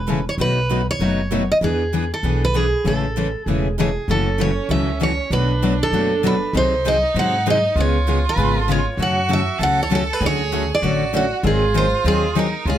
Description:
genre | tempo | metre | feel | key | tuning
acoustic string swing (jazz manouche) | 196 BPM | 4/4 | swing 60% on 8ths | A major, F# minor from 4.1 s | A4 = 442 Hz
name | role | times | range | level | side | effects
picked steel-string acoustic guitar | melody | 0.0-12.8 s | F#4 to F#5 | -21 LUFS | right 2 dB | none
upright bass | bass | 0.0-12.8 s | E1 to G#2 | -22 LUFS | equal | none
picked steel-string acoustic guitar | accompaniment | 0.1-12.8 s | B2 to B#4 | -22 LUFS | left 6 dB | none
picked steel-string acoustic guitar | accompaniment | 0.1-12.8 s | B2 to B#4 | -27 LUFS | right 5 dB | none
clear violin | second line | 4.1-12.8 s | C#4 to A4 | -26 LUFS | right 6 dB | none
room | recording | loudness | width
little or no reverb | close, detailed microphones | -17 LUFS | side -11 dB against mid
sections
0.0-4.1 A section; 4.1-12.8 B section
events
none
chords
0.4 B7; 1.6 E7; 2.8 Amaj7; 4.1 F#m7; 5.3 Bm7; 6.5 G#7/B#; 7.8 C#7; 9.0 F#m; 10.2 Dmaj7; 11.4 G#7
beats
0.07 | 0.38 0.69 1.00 1.31 | 1.61 1.92 2.23 2.54 | 2.85 3.15 3.46 3.77 | 4.08 4.38 4.69 5.00 | 5.31 5.61 5.92 6.23 | 6.53 6.84 7.15 7.45 | 7.76 8.07 8.37 8.68 | 8.99 9.29 9.60 9.90 | 10.21 10.52 10.82 11.13 | 11.44 11.74 12.05 12.35 | 12.66

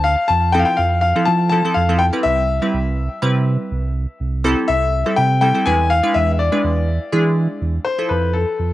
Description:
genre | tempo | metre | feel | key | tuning
dance-pop | 123 BPM | 4/4 | straight | unclear | A4 = 438 Hz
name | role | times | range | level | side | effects
clear grand piano | melody | 0.0-8.7 s | A4 to A5 | -18 LUFS | left 3 dB | plate reverb, tape echo
sub bass with octave | bass | 0.0-8.7 s | C2 to F3 | -18 LUFS | right 2 dB | none
glassy wavetable pluck | accompaniment | 0.5-8.5 s | F3 to B4 | -21 LUFS | right 2 dB | chorus
room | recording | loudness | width
light reverb | home recording on cassette | -15 LUFS | side -15 dB against mid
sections
0.0-7.9 A section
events
drop 0.0-7.9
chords
0.1 Fmaj7; 2.0 Cmaj7; 4.0 Am7/C; 5.7 E7; 7.9 Fmaj7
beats
| 0.06 0.54 1.03 1.52 | 2.01 2.49 2.98 3.47 | 3.96 4.45 4.93 5.42 | 5.91 6.40 6.88 7.37 | 7.86 8.35

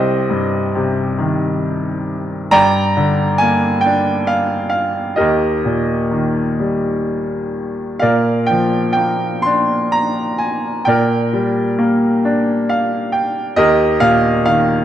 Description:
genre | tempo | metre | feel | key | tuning
classical, lyrical solo piano | 42-46 BPM (dotted quarters) | 6/8 | rubato | unclear | A4 = 440 Hz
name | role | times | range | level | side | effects
bright baby grand piano | solo | 0.0-14.8 s | C2 to C6 | -14 LUFS | equal | none
room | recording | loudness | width
moderate scoring stage reverb, RT60 2.1 s | dark, warm production | -14 LUFS | side -11 dB against mid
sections
0.0-14.8 A section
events
grand piano fill 12.2-13.6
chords
0.0 Cm; 2.5 Gm; 5.2 Eb; 8.0 Bb; 10.9 Gm/Bb; 13.6 Eb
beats
1.17 | 2.50 3.84 | 5.18 6.58 | 8.01 9.45 | 10.86 12.24 | 13.57

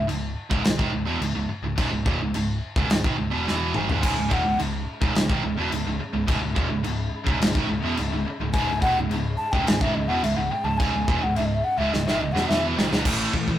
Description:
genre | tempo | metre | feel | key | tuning
heavy metal | 106 BPM | 4/4 | straight | C# minor | A4 = 442 Hz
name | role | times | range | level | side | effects
breathy alto ocarina | melody | 0.0-0.1, 4.0-4.6, 8.5-12.7 s | D#5 to A5 | -25 LUFS | left 1 dB | none
distorted electric guitar | riff | 0.0-13.6 s | C#2 to A3 | -27 LUFS | right 4 dB | overdrive
scooped high-gain guitar | riff | 0.0-13.6 s | C#2 to A3 | -31 LUFS | left 5 dB | distortion
modern bright picked electric bass | bass | 0.0-13.5 s | C#1 to A1 | -31 LUFS | equal | none
modern studio drum kit | drums | 0.1-13.6 s | china cymbal, crash cymbal, kick drum, snare drum, toms | -26 LUFS | equal | none
warm symphonic string section | sustained chords | 4.0-13.6 s | C#3 to C#5 | -37 LUFS | left 2 dB | none
scooped high-gain guitar | riff | 4.0-13.6 s | C#2 to A3 | -32 LUFS | equal | none
room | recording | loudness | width
moderate studio reverb, RT60 0.6 s | rough rehearsal-room recording, warm saturation | -21 LUFS | side -12 dB against mid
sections
0.0-13.1 A section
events
ocarina solo 0.0-13.1; drum fill 3.5-4.0, 11.9-13.1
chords
0.0 C#m; 13.1 A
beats
0.09 0.65 1.21 | 1.77 2.34 2.90 3.46 | 4.03 4.59 5.15 5.72 | 6.28 6.84 7.41 7.97 | 8.54 9.10 9.66 10.23 | 10.79 11.36 11.92 12.49 | 13.05

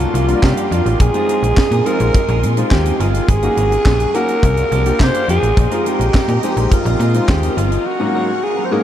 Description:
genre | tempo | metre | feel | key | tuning
early-eighties boogie funk | 105 BPM | 4/4 | straight | unclear | A4 = 439 Hz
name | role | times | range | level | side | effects
breathy alto saxophone | melody | 0.0-8.8 s | F4 to C5 | -18 LUFS | equal | tape echo
phased string machine | sustained chords | 0.0-8.8 s | Bb4 to Db6 | -27 LUFS | equal | ensemble chorus, phaser
semi-hollow electric guitar | riff | 0.0-8.8 s | F3 to Bb4 | -26 LUFS | right 4 dB | analog chorus
slap-like FM bass | bass | 0.0-7.8 s | G1 to C3 | -17 LUFS | equal | none
tight funk drum kit | drums | 0.0-7.8 s | handclaps, hi-hat, kick drum, snare drum | -19 LUFS | equal | none
warm grand piano | accompaniment | 0.3-8.8 s | Ab2 to Ab4 | -22 LUFS | left 2 dB | none
room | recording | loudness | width
moderate huge ambient reverb, RT60 8.4 s | dreamy mix soaked in reverb | -13 LUFS | side -11 dB against mid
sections
0.0-8.8 A section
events
break 7.9-8.8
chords
0.0 C9sus4; 1.0 Bb9sus4; 3.3 Ab9sus4; 4.4 C9sus4; 5.6 Bb9sus4; 7.9 Ab9sus4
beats
0.43 | 1.00 1.57 2.14 2.71 | 3.29 3.86 4.43 5.00 | 5.57 6.14 6.71 7.29 | 7.86 8.43

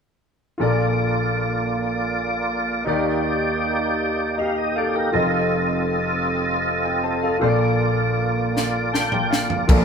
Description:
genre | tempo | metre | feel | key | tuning
slow gospel | 53 BPM (dotted quarters) | 6/8 | straight | Bb major | A4 = 440 Hz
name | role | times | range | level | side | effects
clear grand piano | accompaniment | 0.6-9.8 s | F1 to A5 | -22 LUFS | left 1 dB | none
tonewheel organ | sustained chords | 0.6-9.8 s | Bb3 to G5 | -22 LUFS | right 2 dB | slow rotary speaker, overdrive, chorus vibrato
crisp fusion drum kit | drums | 8.6-9.8 s | crash cymbal, kick drum, snare drum, toms | -20 LUFS | equal | none
vintage slap bass | bass | 9.7-9.8 s | Bb1 | -17 LUFS | equal | none
room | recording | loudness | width
moderate studio reverb, RT60 0.8 s | band playing live in one room | -19 LUFS | side -6 dB against mid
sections
0.6-9.7 A section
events
grand piano fill 8.6-9.7; tonewheel organ fill 8.6-9.7; drum fill 8.6-9.7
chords
0.6 Bbmaj7; 2.9 Ebmaj7; 5.1 F7; 7.4 Bbmaj7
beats
| 0.60 1.74 | 2.87 4.01 | 5.14 6.28 | 7.41 8.55 | 9.69

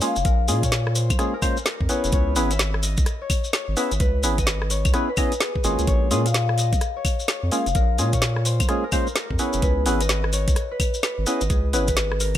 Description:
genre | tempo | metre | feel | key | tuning
UK garage, two-step garage | 128 BPM | 4/4 | swing 63% on 16ths | Bb minor | A4 = 439 Hz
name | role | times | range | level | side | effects
concert harp | melody | 0.0-12.4 s | Gb4 to F5 | -29 LUFS | left 4 dB | digital delay
percussive organ stab | stabs | 0.0-11.9 s | Ab3 to Eb5 | -26 LUFS | equal | lush chorus, ping-pong delay
garage drum kit | drums | 0.0-12.4 s | claves, hi-hat, rim click, snare drum | -26 LUFS | equal | none
maracas | percussion | 0.0-12.4 s | none | -31 LUFS | left 2 dB | none
saturated sub bass | bass | 0.2-12.4 s | F1 to Bb2 | -23 LUFS | equal | none
electronic kick drum | drums | 0.2-12.4 s | none | -23 LUFS | equal | none
room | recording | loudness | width
little or no reverb | none | -19 LUFS | side -12 dB against mid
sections
0.0-12.4 A section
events
none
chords
0.0 Bbm7; 2.1 Dbm7; 5.9 Bbm7; 9.6 Dbm7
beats
| 0.25 0.72 1.19 1.66 | 2.13 2.60 3.06 3.53 | 4.00 4.47 4.94 5.41 | 5.88 6.35 6.81 7.28 | 7.75 8.22 8.69 9.16 | 9.63 10.10 10.56 11.03 | 11.50 11.97

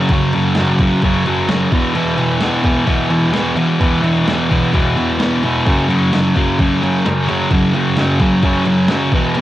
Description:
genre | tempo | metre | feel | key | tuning
garage rock duo or trio | 130 BPM | 4/4 | straight | unclear | A4 = 440 Hz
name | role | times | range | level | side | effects
thick fuzz guitar | riff | 0.0-9.4 s | E2 to F#3 | -13 LUFS | equal | distortion, cassette tape
boom bap sampler-style drum kit | drums | 0.1-9.4 s | crash cymbal, kick drum, snare drum | -20 LUFS | equal | overdrive
room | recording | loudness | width
light reverb | home recording on cassette | -13 LUFS | side -14 dB against mid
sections
0.0-9.4 A section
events
none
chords
0.0 F#5; 1.7 E5; 5.7 F#5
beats
| 0.10 0.57 1.03 1.49 | 1.96 2.42 2.88 3.35 | 3.81 4.27 4.73 5.20 | 5.66 6.12 6.58 7.05 | 7.51 7.97 8.43 8.89 | 9.35

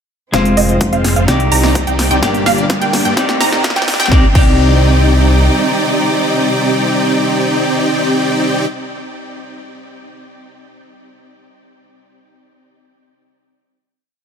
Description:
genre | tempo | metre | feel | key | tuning
EDM, festival progressive house | 127 BPM | 4/4 | straight | C minor | A4 = 439 Hz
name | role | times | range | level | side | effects
semi-hollow electric guitar | accompaniment | 0.3-8.7 s | G2 to D5 | -19 LUFS | left 2 dB | sidechain pumping, dub echo
rich symphonic string section | sustained chords | 0.3-8.5 s | C3 to D5 | -22 LUFS | right 2 dB | sidechain pumping
wide unison pluck | arpeggios | 0.3-8.7 s | Eb5 to Bb5 | -20 LUFS | moving between left 1 dB and right 6 dB | auto-pan, sidechain pumping, dub echo
dense compressed supersaw | riff | 0.3-8.7 s | Ab3 to Bb5 | -16 LUFS | equal | sidechain pumping, low-pass filter, dub echo
wide detuned saw bass | bass | 0.3-5.5 s | F1 to G2 | -15 LUFS | equal | chorus, sidechain pumping
big-room dance drum kit | drums | 0.3-4.5 s | crash cymbal, hi-hat, snare drum | -20 LUFS | equal | none
electronic kick drum | drums | 0.3-4.5 s | none | -14 LUFS | equal | high-pass filter on kick, high-pass filter on room
riser | sound effects | 1.9-4.1 s | none | -28 LUFS | right 2 dB | none
room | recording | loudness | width
light reverb, digital ambience | high-pass filter | -11 LUFS | side -7 dB against mid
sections
0.3-4.1 build; 4.1-7.9 final chord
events
build-up 0.3-4.1; drum fill 0.3-4.1; filter sweep on supersaw synth 0.3-4.1; filter sweep on synth pluck 0.3-4.1; filter sweep 0.3-4.1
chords
0.3 Fm; 1.3 Cmadd9; 2.2 Gm; 3.2 Cmadd9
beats
| 0.34 0.81 1.28 1.75 | 2.23 2.70 3.17 3.64 | 4.12 4.59 5.06 5.53 | 6.01 6.48 6.95 7.42

